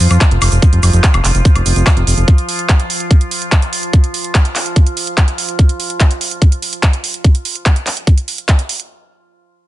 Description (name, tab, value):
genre	psychedelic trance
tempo	145 BPM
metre	4/4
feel	straight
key	unclear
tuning	A4 = 440 Hz
part	overtone-sweeping drone	sustained chords	0.0-5.6 s	F3 to F4	-23 LUFS	right 1 dB	chorus, built-in reverb, vintage 12-bit sampler grit, sidechain pumping
part	fat analog bass	bass	0.0-2.2 s	F1 to F2	-11 LUFS	equal	none
part	drum and bass drum kit	drums	0.0-8.9 s	handclaps, hi-hat, woodblock	-18 LUFS	right 1 dB	overdrive
part	tube shaker	percussion	0.1-2.3 s	none	-24 LUFS	right 7 dB	none
part	electronic kick drum	drums	0.2-8.6 s	none	-9 LUFS	equal	none
room	digital ambience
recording	nothing above 10.9 kHz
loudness	-11 LUFS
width	side -15 dB against mid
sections	0.0-8.9 A section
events	none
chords	0.0 F5